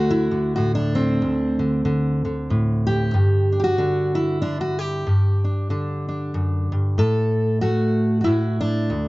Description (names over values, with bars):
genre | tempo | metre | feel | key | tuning
folk, solo fingerstyle acoustic guitar | 94 BPM | 3/4 | swing 58% on 8ths | unclear | A4 = 440 Hz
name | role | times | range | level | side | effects
fingerpicked steel-string acoustic guitar | solo | 0.0-9.1 s | D2 to A4 | -18 LUFS | equal | none
room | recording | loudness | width
light reverb | dark, warm production, nothing above 7.7 kHz | -19 LUFS | side -20 dB against mid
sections
0.0-9.1 A section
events
none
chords
0.0 D; 3.1 G5; 7.0 N.C.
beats
0.57 | 1.21 1.85 2.50 | 3.14 3.78 4.42 | 5.06 5.70 6.34 | 6.98 7.62 8.26 | 8.90